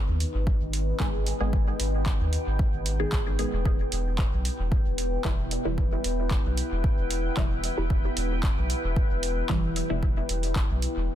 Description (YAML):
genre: dub techno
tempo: 113 BPM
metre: 4/4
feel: straight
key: unclear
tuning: A4 = 440 Hz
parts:
  - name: deep dark ambient pad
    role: sustained chords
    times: 0.0-11.2 s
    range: B3 to G5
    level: -32 LUFS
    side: left 2 dB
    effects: chorus, built-in reverb, sidechain pumping
  - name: soft dub sub bass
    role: bass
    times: 0.1-11.1 s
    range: E1 to D#2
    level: -29 LUFS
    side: equal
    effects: sidechain pumping
  - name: soft vintage rhythm box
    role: drums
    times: 0.2-10.9 s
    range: handclaps, hi-hat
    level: -35 LUFS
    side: right 1 dB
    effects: dub echo
  - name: electronic kick drum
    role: drums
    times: 0.5-10.7 s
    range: none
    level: -26 LUFS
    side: equal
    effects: none
  - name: filtered dub chord stab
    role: stabs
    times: 1.0-10.2 s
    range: B2 to G#4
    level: -32 LUFS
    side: right 1 dB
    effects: phaser, cassette tape, dub echo
room: little or no reverb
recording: dense, heavily limited modern master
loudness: -24 LUFS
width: side -11 dB against mid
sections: 0.0-11.2 A section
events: none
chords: 0.0 G#m; 3.7 Em